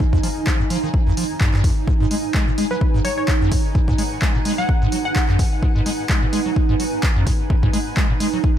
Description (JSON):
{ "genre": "acid house", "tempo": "128 BPM", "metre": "4/4", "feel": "swing 55% on 16ths", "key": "unclear", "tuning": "A4 = 439 Hz", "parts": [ { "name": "warbly tape-like pad", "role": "sustained chords", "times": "0.0-8.6 s", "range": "Eb4", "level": "-27 LUFS", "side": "right 6 dB", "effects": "chorus, built-in reverb, phaser, sidechain pumping" }, { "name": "acid bass, square", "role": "riff", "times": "0.0-8.4 s", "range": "F2 to Ab3", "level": "-23 LUFS", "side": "equal", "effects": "tube saturation, lush chorus, vintage 12-bit sampler grit, sidechain pumping, tape echo" }, { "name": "electronic kick drum", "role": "drums", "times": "0.0-8.5 s", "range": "none", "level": "-18 LUFS", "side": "equal", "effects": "overdrive" }, { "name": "granular cloud pad", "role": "texture", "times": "0.0-8.6 s", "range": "Eb4 to Ab5", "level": "-28 LUFS", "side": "right 2 dB", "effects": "built-in reverb, sidechain pumping" }, { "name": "punchy analog drum machine", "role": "drums", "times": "0.2-8.3 s", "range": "handclaps, hi-hat", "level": "-27 LUFS", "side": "equal", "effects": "overdrive" }, { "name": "glassy wavetable pluck", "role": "melody", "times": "2.7-5.7 s", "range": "Cb5 to Gb5", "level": "-28 LUFS", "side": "left 3 dB", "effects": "chorus, cassette tape, dub echo" } ], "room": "digital ambience", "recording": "none", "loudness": "-16 LUFS", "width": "side -10 dB against mid", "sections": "0.0-8.6 A section", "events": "none", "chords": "0.0 Fm7; 1.9 Abm7" }